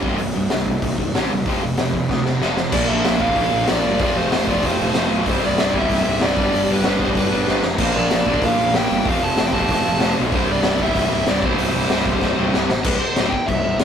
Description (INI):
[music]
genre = punk rock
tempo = 190 BPM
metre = 4/4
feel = straight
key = C major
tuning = A4 = 437 Hz
[part]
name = cranked stack guitar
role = riff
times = 0.0-13.0 s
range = C2 to Bb4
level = -23 LUFS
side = right 4 dB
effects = overdrive
[part]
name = distorted electric guitar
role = riff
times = 0.0-13.8 s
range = C2 to Bb3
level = -25 LUFS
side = left 6 dB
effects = overdrive
[part]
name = fuzz picked electric bass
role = bass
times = 0.0-13.8 s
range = C1 to D2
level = -24 LUFS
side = equal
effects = overdrive
[part]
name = raw garage drum kit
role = drums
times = 0.0-13.8 s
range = crash cymbal, hi-hat, kick drum, snare drum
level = -21 LUFS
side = left 1 dB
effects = none
[part]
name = biting lead guitar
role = melody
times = 2.7-13.8 s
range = B4 to A5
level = -23 LUFS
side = equal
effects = overdrive
[sound]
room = light reverb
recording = rough rehearsal-room recording, tube saturation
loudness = -16 LUFS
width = side -8 dB against mid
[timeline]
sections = 0.0-2.7 A section; 2.7-12.9 B section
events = drum fill 2.1-2.7, 7.5-7.8, 12.2-12.9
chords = 0.0 C5; 1.5 F5; 2.7 Bb; 4.0 F; 5.3 C; 6.4 G; 7.8 Bb; 9.1 F; 10.3 C